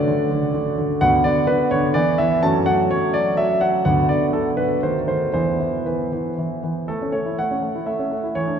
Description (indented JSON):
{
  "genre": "classical-period piano sonatina",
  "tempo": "115-129 BPM",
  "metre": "3/4",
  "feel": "rubato",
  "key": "A major",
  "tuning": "A4 = 441 Hz",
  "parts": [
    { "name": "clear concert grand piano", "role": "solo", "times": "0.0-8.6 s", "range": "D2 to A5", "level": "-18 LUFS", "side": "equal", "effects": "none" }
  ],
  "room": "wet cathedral reverb, RT60 5.1 s",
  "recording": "recorded in a church or concert hall",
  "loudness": "-18 LUFS",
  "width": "side -8 dB against mid",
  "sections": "0.0-6.9 A section; 6.9-8.6 B section",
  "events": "none",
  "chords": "0.0 D; 1.0 Bm/D; 2.0 E5; 2.4 F#m; 3.9 Bm/D; 4.8 D#dim7; 5.3 E5; 6.9 A"
}